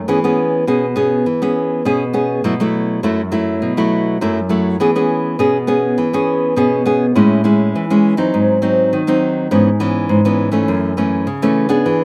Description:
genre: samba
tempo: 102 BPM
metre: 4/4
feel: straight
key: E major, A major from 7.2 s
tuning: A4 = 440 Hz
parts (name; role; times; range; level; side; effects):
- nylon-string guitar; solo; 0.0-12.0 s; F#2 to G#4; -16 LUFS; equal; none
room: light reverb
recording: recorded outdoors, with no room sound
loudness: -16 LUFS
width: mono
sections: 0.0-7.2 A section; 7.2-12.0 B section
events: none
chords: 0.1 E6; 2.4 B7sus4; 4.8 E6; 7.2 Amaj7; 8.3 G#7; 9.5 C#m7/G#; 10.7 F#m7

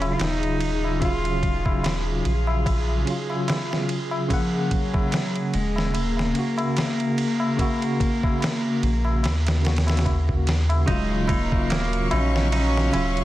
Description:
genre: trip hop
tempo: 73 BPM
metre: 4/4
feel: swing 56% on 16ths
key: Eb minor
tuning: A4 = 440 Hz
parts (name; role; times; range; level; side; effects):
- warm cello; melody; 0.0-13.2 s; F3 to F4; -28 LUFS; equal; vintage 12-bit sampler grit, tape echo
- bell-like tine electric piano; accompaniment; 0.0-13.2 s; Db3 to Gb5; -28 LUFS; equal; medium stereo tremolo, tape echo
- soft dub sub bass; bass; 0.0-13.2 s; Eb1 to Eb2; -24 LUFS; equal; tube saturation
- dusty soul sampler-style drum kit; drums; 0.0-13.2 s; kick drum, ride cymbal, snare drum; -27 LUFS; equal; vintage 12-bit sampler grit
- tabla; percussion; 0.0-13.2 s; none; -33 LUFS; left 2 dB; none
- bowed-like drone; texture; 0.0-10.9 s; Ab4; -36 LUFS; left 1 dB; built-in reverb
- rich chamber string section; sustained chords; 10.9-13.2 s; Gb3 to Db6; -31 LUFS; equal; none
- semi-hollow electric guitar; arpeggios; 10.9-13.2 s; Bb3 to Eb4; -30 LUFS; right 4 dB; ping-pong delay
room: digital ambience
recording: dense, heavily limited modern master, vinyl crackle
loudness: -20 LUFS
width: side -15 dB against mid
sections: 0.0-10.9 A section; 10.9-13.2 B section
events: none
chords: 0.0 Ebm9; 4.3 Gb/Eb; 10.9 Ebm9

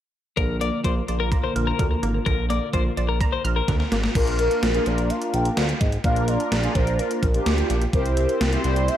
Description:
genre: synth-pop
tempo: 127 BPM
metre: 4/4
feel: straight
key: unclear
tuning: A4 = 440 Hz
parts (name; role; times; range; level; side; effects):
- twelve-string electric guitar; second line; 0.4-3.7 s; Bb4 to D5; -28 LUFS; left 8 dB; tape echo
- string machine, cellos; sustained chords; 0.4-4.1 s; D3 to Bb4; -31 LUFS; equal; ensemble chorus, low-pass filter
- analog pluck; arpeggios; 0.4-4.1 s; D3 to F6; -31 LUFS; right 4 dB; chorus, low-pass filter, tape echo
- smooth synth bass; bass; 0.4-8.9 s; Ab1 to D2; -24 LUFS; equal; none
- gated 80s digital drum machine; drums; 0.4-9.0 s; crash cymbal, hi-hat, kick drum, snare drum; -25 LUFS; equal; gated reverb, gated reverb snare, overdrive, tape echo
- hollow clarinet-like synth lead; melody; 4.2-9.0 s; Bb4 to G5; -27 LUFS; equal; chorus, tremolo, tape echo
- mellow synth brass; accompaniment; 4.2-9.0 s; Bb3 to C5; -25 LUFS; equal; chorus, phaser
room: light reverb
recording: echo-heavy mix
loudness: -20 LUFS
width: side -11 dB against mid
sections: 0.4-4.2 A section; 4.2-9.0 B section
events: filter sweep 0.4-4.2; drum fill 3.7-4.2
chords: 0.4 Bb; 7.9 C7

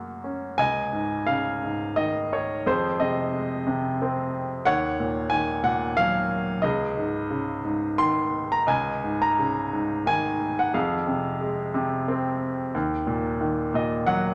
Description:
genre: classical, lyrical solo piano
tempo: 89 BPM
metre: 3/4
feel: uneven beats, rubato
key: Db major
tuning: A4 = 440 Hz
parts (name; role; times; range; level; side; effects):
- clear baby grand piano; solo; 0.0-14.3 s; Db2 to C6; -26 LUFS; equal; none
room: wet recital hall reverb, RT60 1.6 s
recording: none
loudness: -26 LUFS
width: mono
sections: 0.6-14.3 A section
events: none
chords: 0.0 F#; 0.6 Dbsus2; 2.6 Fm7; 4.7 Ebm7; 6.6 Dbsus2; 10.7 Fm; 12.8 Ebm

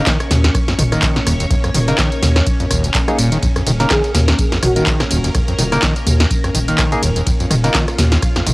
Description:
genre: acid house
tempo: 125 BPM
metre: 4/4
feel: swing 56% on 16ths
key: unclear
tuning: A4 = 440 Hz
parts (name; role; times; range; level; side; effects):
- string machine, full ensemble; sustained chords; 0.0-8.5 s; Bb3 to Db5; -24 LUFS; equal; ensemble chorus, sidechain pumping, cassette tape
- barky tine electric piano; stabs; 0.0-7.8 s; Bb3 to Bb4; -23 LUFS; left 1 dB; phaser, cassette tape, tape echo
- overdriven acid bass; riff; 0.1-8.5 s; Db2 to Gb3; -20 LUFS; equal; distortion, wide subtle chorus, cassette tape, tape echo
- breakbeat sampler-style drum kit; drums; 0.1-8.5 s; ride cymbal, snare drum; -32 LUFS; equal; none
- electronic kick drum; drums; 0.1-8.5 s; none; -18 LUFS; equal; cassette tape
- punchy analog drum machine; drums; 0.1-8.5 s; handclaps, hi-hat, rim click, snare drum, tambourine, toms; -18 LUFS; equal; cassette tape
- round analog bass; bass; 0.3-8.5 s; Eb1 to Eb2; -17 LUFS; equal; sidechain pumping
- breathy flute-like synth lead; melody; 3.9-4.8 s; Gb4 to Ab4; -21 LUFS; right 1 dB; tremolo, ensemble chorus, cassette tape, analog delay
room: light reverb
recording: home recording on cassette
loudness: -13 LUFS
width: side -22 dB against mid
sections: 0.0-8.5 A section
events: none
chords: 0.0 Eb5

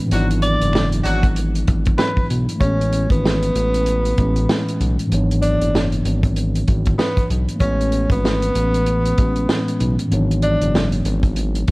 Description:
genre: hip hop, boom-bap hip-hop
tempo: 96 BPM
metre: 4/4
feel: swing 59% on 16ths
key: A major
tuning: A4 = 441 Hz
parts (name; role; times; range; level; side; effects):
- breathy tenor saxophone; melody; 0.0-10.9 s; B3 to D5; -22 LUFS; equal; none
- mellow tine electric piano; accompaniment; 0.0-11.7 s; G#2 to C#5; -22 LUFS; equal; slow stereo tremolo, cassette tape
- warm horn section; stabs; 0.1-1.2 s; F#3 to F#4; -26 LUFS; equal; slapback echo
- smooth synth bass; bass; 0.1-11.7 s; F#1 to B1; -20 LUFS; equal; tube saturation
- warm soul drum kit; drums; 0.1-11.7 s; hi-hat, kick drum, snare drum; -20 LUFS; equal; none
- finger snaps; percussion; 0.7-2.2 s; none; -34 LUFS; right 1 dB; none
room: studio reverb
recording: worn, warbling old tape, cassette tape, vinyl crackle, warbly pitch drift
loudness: -16 LUFS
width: side -23 dB against mid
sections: 0.0-2.6 A section; 2.6-11.7 B section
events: none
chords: 0.1 E9; 2.6 Amaj9; 5.1 E13; 7.6 Amaj9; 10.1 E13

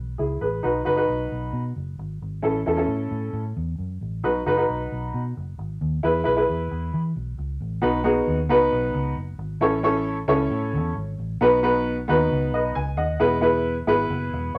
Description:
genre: uptempo 1960s-style soul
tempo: 134 BPM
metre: 4/4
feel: straight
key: B mixolydian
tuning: A4 = 438 Hz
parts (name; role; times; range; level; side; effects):
- vintage muted fingered electric bass; bass; 0.0-14.6 s; E1 to E3; -30 LUFS; equal; none
- warm upright piano; accompaniment; 0.2-14.6 s; B3 to G#5; -24 LUFS; equal; none
room: moderate studio reverb, RT60 0.7 s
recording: none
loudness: -24 LUFS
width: mono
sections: 0.0-7.8 A section; 7.8-14.6 B section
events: none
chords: 0.0 E; 0.6 B; 2.4 A; 4.2 B; 6.0 E; 7.8 B; 9.6 A; 11.4 B; 13.2 E

